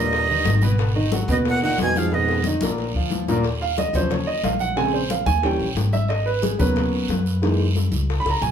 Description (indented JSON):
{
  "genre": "Afro-Cuban jazz",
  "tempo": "181 BPM",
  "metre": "4/4",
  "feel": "straight",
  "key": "Eb minor",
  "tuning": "A4 = 439 Hz",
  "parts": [
    { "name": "breathy bright jazz flute", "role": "melody", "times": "0.0-2.5 s", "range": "Eb5 to Ab5", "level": "-23 LUFS", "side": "right 3 dB", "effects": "none" },
    { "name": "breathy trombone", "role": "second line", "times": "0.0-2.5 s", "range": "Gb2 to Cb3", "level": "-28 LUFS", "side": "right 6 dB", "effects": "none" },
    { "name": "warm upright piano", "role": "accompaniment", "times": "0.0-8.5 s", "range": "Bb2 to Cb6", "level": "-23 LUFS", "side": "right 1 dB", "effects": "none" },
    { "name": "upright bass", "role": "bass", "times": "0.0-8.5 s", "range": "Ab1 to Gb2", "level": "-23 LUFS", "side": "equal", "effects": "none" },
    { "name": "bongos", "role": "percussion", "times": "0.1-8.3 s", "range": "none", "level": "-32 LUFS", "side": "left 7 dB", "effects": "none" },
    { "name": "congas", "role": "percussion", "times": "0.1-8.5 s", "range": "none", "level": "-30 LUFS", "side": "left 5 dB", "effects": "none" },
    { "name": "guiro", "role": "percussion", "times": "0.1-8.5 s", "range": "none", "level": "-34 LUFS", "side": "right 5 dB", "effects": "none" }
  ],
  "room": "wet large studio reverb, RT60 0.9 s",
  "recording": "band playing live in one room",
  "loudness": "-19 LUFS",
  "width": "side -8 dB against mid",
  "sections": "0.0-3.4 A section; 3.4-8.5 B section",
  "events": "drum fill 2.1-3.4, 7.8-8.5; upright piano solo 3.4-8.5",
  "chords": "0.1 Eb; 0.8 Abm7; 2.1 Fm7b5; 2.8 Bb; 3.4 Ebm7; 4.8 Bbm7; 5.4 Eb7b9; 6.1 Abm11; 7.4 Gb13"
}